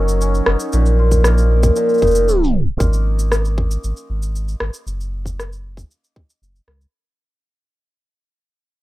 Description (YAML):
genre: folktronica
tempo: 116 BPM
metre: 4/4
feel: straight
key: unclear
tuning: A4 = 438 Hz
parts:
  - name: warbly tape-like pad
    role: sustained chords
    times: 0.0-2.8 s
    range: F3 to Bb4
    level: -26 LUFS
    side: right 1 dB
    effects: chorus, built-in reverb
  - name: hammered dulcimer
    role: arpeggios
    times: 0.0-8.2 s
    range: Bb2 to Bb4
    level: -19 LUFS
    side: equal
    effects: ping-pong delay
  - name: warm sub bass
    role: bass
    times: 0.0-6.9 s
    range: F1 to Db2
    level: -17 LUFS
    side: equal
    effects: none
  - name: electronic shaker and rim click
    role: drums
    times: 0.1-6.9 s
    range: none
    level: -22 LUFS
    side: equal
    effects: none
  - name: electronic kick drum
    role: drums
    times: 1.1-6.3 s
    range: none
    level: -20 LUFS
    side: equal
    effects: none
room: little or no reverb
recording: rough home demo mix, tape stop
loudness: -14 LUFS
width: side -17 dB against mid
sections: 0.0-2.8 A section; 2.8-6.9 B section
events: tape stop 2.3-2.8; fade-out 2.8-6.9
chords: 0.0 Gb6; 0.7 Bbsus4; 2.8 N.C.; 4.9 Gb5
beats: 0.21 | 0.73 1.25 1.76 2.28 | 2.80 3.31 3.83 4.35 | 4.87 5.38 5.90 6.42